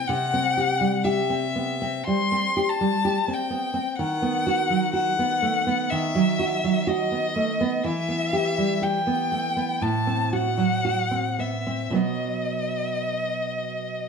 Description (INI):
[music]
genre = romantic duo for violin and classical guitar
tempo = 61 BPM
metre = 4/4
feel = uneven beats, rubato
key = unclear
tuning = A4 = 443 Hz
[part]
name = rich violin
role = melody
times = 0.0-14.1 s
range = D#5 to C6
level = -25 LUFS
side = left 3 dB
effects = none
[part]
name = nylon-string guitar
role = accompaniment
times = 0.0-14.1 s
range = A2 to G4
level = -24 LUFS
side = right 2 dB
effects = none
[sound]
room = moderate recital hall reverb, RT60 1.4 s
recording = dark, warm production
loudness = -22 LUFS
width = side -5 dB against mid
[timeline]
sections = 0.0-14.1 A section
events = none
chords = 0.0 C; 4.0 B/D#; 7.8 Em; 9.8 F#dim/A; 11.9 B